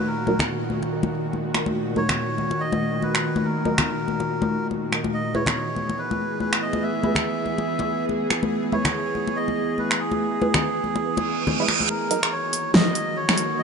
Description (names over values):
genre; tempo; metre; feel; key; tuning
deep dubstep; 142 BPM; 4/4; swing 59% on 16ths, half-time; Eb phrygian; A4 = 440 Hz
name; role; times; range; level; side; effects
melodica; melody; 0.0-13.6 s; G#4 to E5; -28 LUFS; right 1 dB; dub echo
bowed-like drone; sustained chords; 0.0-13.6 s; Bb2 to G#4; -27 LUFS; right 1 dB; built-in reverb, vintage 12-bit sampler grit
downlifter, reverse cymbal and riser; sound effects; 0.0-1.8, 11.2-13.6 s; none; -30 LUFS; right 6 dB; none
filtered dub chord stab; stabs; 0.3-12.2 s; Gb3 to B4; -32 LUFS; right 4 dB; none
congas; percussion; 0.3-11.9 s; none; -27 LUFS; left 4 dB; dub echo
dubstep drum kit; drums; 0.4-13.5 s; finger snaps, hi-hat, snare drum; -22 LUFS; equal; overdrive
room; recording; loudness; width
moderate huge ambient reverb, RT60 4.5 s; nothing above 10.9 kHz; -21 LUFS; side -5 dB against mid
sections
0.0-11.9 A section; 11.9-13.6 B section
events
reverse cymbal 11.2-11.9; build-up 11.9-13.6; filter sweep on synth drone 11.9-13.6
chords
0.0 Ebm; 5.1 E; 11.9 Ebm